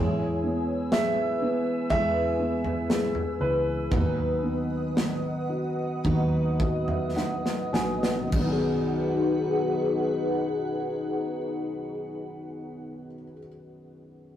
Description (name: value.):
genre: pop ballad.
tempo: 50-62 BPM.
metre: 4/4.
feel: straight.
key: B major.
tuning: A4 = 443 Hz.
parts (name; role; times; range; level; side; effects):
felt-muted upright piano; accompaniment; 0.0-14.4 s; B1 to G#5; -31 LUFS; left 1 dB; none.
glassy FM pad; sustained chords; 0.0-13.3 s; D#4 to E6; -30 LUFS; left 1 dB; ensemble chorus, built-in reverb, phaser.
picked steel-string acoustic guitar; arpeggios; 0.0-13.5 s; B2 to B4; -36 LUFS; right 2 dB; none.
vintage muted fingered electric bass; bass; 0.0-13.3 s; A#1 to E2; -31 LUFS; equal; none.
clear baby grand piano; melody; 0.9-7.1 s; B4 to E5; -30 LUFS; right 1 dB; none.
modern studio drum kit; drums; 0.9-8.6 s; crash cymbal, kick drum, snare drum, toms; -29 LUFS; right 1 dB; none.
room: wet studio reverb, RT60 0.7 s.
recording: rough rehearsal-room recording, warm saturation.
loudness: -24 LUFS.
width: side -11 dB against mid.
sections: 0.0-8.3 A section; 8.3-13.1 B section.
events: slowing down 0.0-8.3; felt piano fill 6.0-8.3; drum fill 7.2-8.3.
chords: 0.0 E; 3.9 B/D#; 8.3 B6.